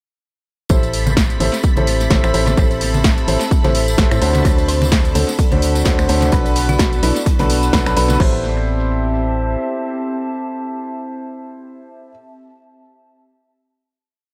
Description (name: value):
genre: piano house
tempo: 128 BPM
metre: 4/4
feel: swing 56% on 16ths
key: A dorian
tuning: A4 = 440 Hz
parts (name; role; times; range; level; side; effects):
- string machine, violins; sustained chords; 0.7-8.2 s; A4 to B5; -31 LUFS; equal; ensemble chorus, sidechain pumping
- clear upright piano; riff; 0.7-12.1 s; D4 to C5; -24 LUFS; equal; vintage 12-bit sampler grit, sidechain pumping, tape echo
- organ-like FM bass; bass; 0.7-9.6 s; A1 to A2; -21 LUFS; equal; sidechain pumping
- electronic kick drum; drums; 0.7-8.3 s; none; -19 LUFS; equal; overdrive
- punchy analog drum machine; drums; 0.7-8.3 s; crash cymbal, finger snaps, hi-hat, snare drum; -25 LUFS; equal; overdrive, tape echo
- tambourine and congas; percussion; 0.7-8.2 s; none; -28 LUFS; equal; tape echo
- warbly tape-like pad; texture; 1.0-12.3 s; B3 to A5; -29 LUFS; equal; chorus, built-in reverb, sidechain pumping
- crisp fusion drum kit; drums; 4.5-8.1 s; hi-hat, snare drum; -36 LUFS; equal; none
- thumb-piano-like synth pluck; melody; 4.7-7.5 s; E4 to C5; -29 LUFS; equal; chorus, cassette tape, tape echo
room: light reverb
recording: echo-heavy mix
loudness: -16 LUFS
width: mono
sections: 0.7-8.2 groove; 8.2-11.9 final chord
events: none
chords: 0.7 Am7; 4.2 D7; 6.3 Bm7; 8.2 Am7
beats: | 0.70 1.17 1.64 2.11 | 2.58 3.04 3.51 3.98 | 4.45 4.92 5.39 5.86 | 6.33 6.79 7.26 7.73 | 8.20 8.67 9.14 9.61 | 10.07 10.54 11.01 11.48